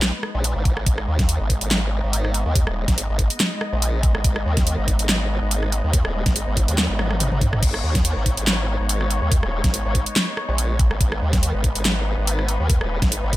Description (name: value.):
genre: heavy wobble dubstep.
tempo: 142 BPM.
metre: 4/4.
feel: swing 54% on 16ths, half-time.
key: G# minor.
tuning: A4 = 440 Hz.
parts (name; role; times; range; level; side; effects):
rich symphonic string section; sustained chords; 0.0-13.4 s; G#3 to D#5; -29 LUFS; left 1 dB; sidechain pumping, low-pass filter.
formant-sweep wobble bass; bass; 0.0-13.4 s; D#1 to D#2; -22 LUFS; equal; chorus, overdrive.
dubstep drum kit; drums; 0.0-13.4 s; crash cymbal, handclaps, hi-hat, rim click, snare drum, toms; -23 LUFS; equal; none.
electronic kick drum; drums; 0.7-13.4 s; none; -20 LUFS; equal; none.
room: digital ambience.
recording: none.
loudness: -18 LUFS.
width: side -16 dB against mid.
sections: 0.0-13.4 A section.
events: drum fill 7.0-7.6.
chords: 0.0 G#m.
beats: 0.02 0.44 | 0.86 1.29 1.71 2.13 | 2.56 2.98 3.40 3.82 | 4.25 4.67 5.09 5.51 | 5.93 6.36 6.78 7.20 | 7.62 8.05 8.47 8.89 | 9.32 9.74 10.16 10.58 | 11.01 11.43 11.85 12.27 | 12.70 13.12.